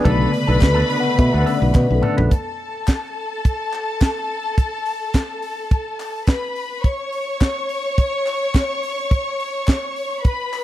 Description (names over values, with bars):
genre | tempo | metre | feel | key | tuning
disco | 106 BPM | 4/4 | straight | unclear | A4 = 440 Hz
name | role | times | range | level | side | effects
clear symphonic string section | second line | 0.0-10.6 s | A4 to C#6 | -23 LUFS | left 2 dB | none
electric guitar with an envelope filter | accompaniment | 0.0-2.3 s | B3 to B4 | -26 LUFS | right 4 dB | tremolo
mellow tine electric piano | accompaniment | 0.0-2.3 s | C#3 to F#5 | -21 LUFS | left 3 dB | slow stereo tremolo
clear studio string section | sustained chords | 0.0-2.3 s | B2 to B3 | -26 LUFS | right 2 dB | none
fingered electric bass | bass | 0.1-2.3 s | A#1 to B2 | -17 LUFS | equal | none
tight funk drum kit | drums | 0.1-10.6 s | handclaps, hi-hat, kick drum, snare drum, toms | -16 LUFS | equal | none
group handclap | percussion | 0.6-10.6 s | none | -37 LUFS | left 6 dB | none
room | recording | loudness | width
studio ambience | dry, close 1970s-style studio recording | -18 LUFS | side -13 dB against mid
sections
0.0-2.3 A section; 2.3-10.6 B section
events
tine electric piano solo 0.0-2.3; drum fill 1.7-2.3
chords
0.1 Bm7; 2.3 Asus2; 6.8 Bsus2